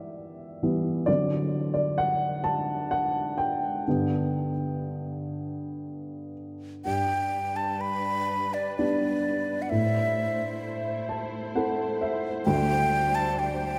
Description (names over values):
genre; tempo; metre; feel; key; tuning
celtic folk, Celtic slow air; 57-68 BPM; 3/4; rubato; G major; A4 = 440 Hz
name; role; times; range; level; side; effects
dark upright piano; accompaniment; 0.0-13.8 s; D2 to A5; -30 LUFS; equal; none
breathy mellow silver concert flute; melody; 6.8-13.8 s; D5 to B5; -30 LUFS; equal; none
muted studio string section; sustained chords; 6.8-13.8 s; G3 to C5; -38 LUFS; equal; none
room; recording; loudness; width
wet cathedral reverb, RT60 4.4 s; recorded in a church or concert hall; -28 LUFS; mono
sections
0.0-6.8 A section; 6.8-13.8 B section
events
upright piano solo 0.0-6.8; upright piano fill 10.6-12.4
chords
0.0 Em; 1.1 D7; 3.9 G; 9.7 Am; 12.4 D7sus4